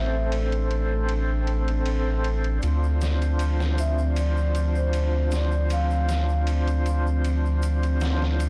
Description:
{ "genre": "trip hop", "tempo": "78 BPM", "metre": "4/4", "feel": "straight", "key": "unclear", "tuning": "A4 = 440 Hz", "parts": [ { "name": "vibraphone with soft mallets", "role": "melody", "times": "0.0-6.4 s", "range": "C5 to F5", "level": "-36 LUFS", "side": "equal", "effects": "tape echo" }, { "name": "tonewheel organ", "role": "accompaniment", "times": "0.0-8.5 s", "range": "C4 to C5", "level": "-34 LUFS", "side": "equal", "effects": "slow rotary speaker, tremolo, tape echo" }, { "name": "dark analog pad", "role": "sustained chords", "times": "0.0-8.5 s", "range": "F3 to D5", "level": "-36 LUFS", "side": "equal", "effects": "chorus, phaser" }, { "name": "round analog bass", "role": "bass", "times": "0.0-8.5 s", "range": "A1 to D2", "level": "-25 LUFS", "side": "equal", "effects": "none" }, { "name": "trip hop sampler-style drum kit", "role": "drums", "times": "0.3-8.5 s", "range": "ride cymbal, snare drum", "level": "-40 LUFS", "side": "equal", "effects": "high-pass filter on cymbals, high-pass filter on snare" }, { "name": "egg shaker", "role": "percussion", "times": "2.6-8.5 s", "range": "none", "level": "-50 LUFS", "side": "equal", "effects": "none" } ], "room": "digital ambience", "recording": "blown-out, overdriven recording, vinyl crackle, overdrive", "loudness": "-24 LUFS", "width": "mono", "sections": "0.0-8.5 A section", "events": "none", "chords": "0.0 Am; 2.6 Dm7" }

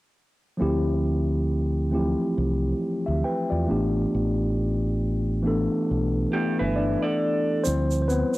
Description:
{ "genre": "R&B, neo-soul", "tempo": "68 BPM", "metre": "4/4", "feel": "swing 58% on 16ths", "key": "D dorian", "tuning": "A4 = 444 Hz", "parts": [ { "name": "mellow tine electric piano", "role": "accompaniment", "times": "0.6-8.4 s", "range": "E3 to G5", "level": "-24 LUFS", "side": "left 1 dB", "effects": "slow stereo tremolo, cassette tape" }, { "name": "deep dub fingered electric bass", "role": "bass", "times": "0.6-8.2 s", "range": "G1 to E2", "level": "-26 LUFS", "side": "equal", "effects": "transformer saturation" }, { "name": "electric guitar through a small old amp", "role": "second line", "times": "6.3-7.6 s", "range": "D4 to D5", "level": "-27 LUFS", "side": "right 3 dB", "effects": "cassette tape" }, { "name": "tube shaker", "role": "percussion", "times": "7.6-8.4 s", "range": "none", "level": "-36 LUFS", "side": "right 7 dB", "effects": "none" } ], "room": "light reverb", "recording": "home recording on cassette", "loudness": "-22 LUFS", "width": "side -18 dB against mid", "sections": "0.6-7.6 A section", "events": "none", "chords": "0.6 Dm11; 3.7 A9sus4; 7.6 Dm11" }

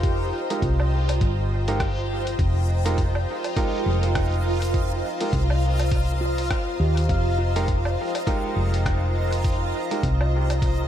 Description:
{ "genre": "ambient dub", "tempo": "102 BPM", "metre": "4/4", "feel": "swing 59% on 16ths", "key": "F minor", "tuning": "A4 = 438 Hz", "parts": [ { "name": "granular cloud pad", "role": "sustained chords", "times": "0.0-10.9 s", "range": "F4 to Bb5", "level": "-29 LUFS", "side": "left 2 dB", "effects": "built-in reverb" }, { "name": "handpan", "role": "arpeggios", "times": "0.0-2.4, 6.2-9.1 s", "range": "F4 to F5", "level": "-34 LUFS", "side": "equal", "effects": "dub echo" }, { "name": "clear upright piano", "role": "stabs", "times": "0.0-10.0 s", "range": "Ab3 to Bb4", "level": "-30 LUFS", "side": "right 3 dB", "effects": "dub echo" }, { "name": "hollow-body short-scale fingered electric bass", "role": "bass", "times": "0.0-10.9 s", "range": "F1 to Eb2", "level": "-22 LUFS", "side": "equal", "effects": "none" }, { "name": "electronic kick drum", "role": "drums", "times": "0.0-10.8 s", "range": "none", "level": "-25 LUFS", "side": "equal", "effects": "none" }, { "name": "lo-fi sampler-style drum kit", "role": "drums", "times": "0.0-10.8 s", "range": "hi-hat, rim click, woodblock", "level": "-35 LUFS", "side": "equal", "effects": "dub echo" }, { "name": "backwards swelling texture", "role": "texture", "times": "0.0-10.9 s", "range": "F4 to Bb5", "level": "-33 LUFS", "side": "right 5 dB", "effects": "built-in reverb" } ], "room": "light reverb", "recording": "none", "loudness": "-21 LUFS", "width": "side -10 dB against mid", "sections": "0.0-10.9 A section", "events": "none", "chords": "0.0 Fm11" }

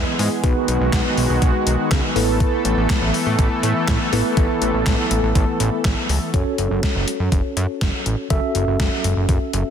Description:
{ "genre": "synth-pop", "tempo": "122 BPM", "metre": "4/4", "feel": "straight", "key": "F# dorian", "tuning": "A4 = 440 Hz", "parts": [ { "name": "mellow tine electric piano", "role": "accompaniment", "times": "0.0-9.7 s", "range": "B3 to E5", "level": "-23 LUFS", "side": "equal", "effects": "medium stereo tremolo" }, { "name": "warm analog pad", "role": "sustained chords", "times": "0.0-6.3 s", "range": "D#3 to A4", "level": "-23 LUFS", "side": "left 1 dB", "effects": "chorus, tremolo" }, { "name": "fat analog bass", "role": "bass", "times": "0.0-9.6 s", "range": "F#1 to A2", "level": "-21 LUFS", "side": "equal", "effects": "none" }, { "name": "gated 80s digital drum machine", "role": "drums", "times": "0.2-9.6 s", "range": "handclaps, hi-hat, kick drum, snare drum", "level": "-20 LUFS", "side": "equal", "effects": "gated reverb, gated reverb snare, overdrive" } ], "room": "light reverb", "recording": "dense, heavily limited modern master", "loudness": "-17 LUFS", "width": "side -8 dB against mid", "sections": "0.0-6.3 A section; 6.3-9.7 B section", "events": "none", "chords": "0.4 B6; 2.2 Asus2; 6.3 F#m" }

